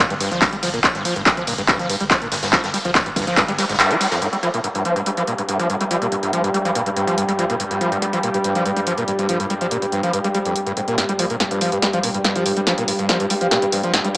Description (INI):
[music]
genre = driving peak-time techno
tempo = 142 BPM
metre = 4/4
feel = straight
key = unclear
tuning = A4 = 440 Hz
[part]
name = screaming distorted acid line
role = riff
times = 0.0-14.2 s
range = F2 to G3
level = -21 LUFS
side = equal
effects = distortion, wide subtle chorus, sidechain pumping, tape echo
[part]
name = jazz brush drum kit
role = drums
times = 0.0-4.2 s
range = hi-hat, snare drum, tambourine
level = -28 LUFS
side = equal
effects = none
[part]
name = saturated sub bass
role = bass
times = 0.1-3.8 s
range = G1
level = -36 LUFS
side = equal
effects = tube saturation, sidechain pumping, low-pass filter
[part]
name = techno drum kit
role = drums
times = 0.1-14.2 s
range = handclaps, hi-hat, ride cymbal, snare drum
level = -20 LUFS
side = equal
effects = sidechain pumping on hats, high-pass filter on hats, sidechain pumping on cymbals, high-pass filter on cymbals, high-pass filter on snare, high-pass filter on room
[part]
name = electronic kick drum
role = drums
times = 0.4-3.5 s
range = none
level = -23 LUFS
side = equal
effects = none
[part]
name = analog drone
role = drone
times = 5.1-14.2 s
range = G2 to G3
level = -23 LUFS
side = equal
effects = chorus, sidechain pumping
[sound]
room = wet spring reverb, RT60 2.0 s, studio ambience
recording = echo-heavy mix, high-pass filter, small speaker sound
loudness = -17 LUFS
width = side -20 dB against mid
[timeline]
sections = 0.0-4.2 A section; 4.2-11.0 B section; 11.0-14.2 C section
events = drop 0.0-4.2; band accent 3.8; build-up 11.0-14.2; drum fill 11.0-14.2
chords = 0.0 G7(no3); 4.2 Fsus2; 11.0 G7(no3)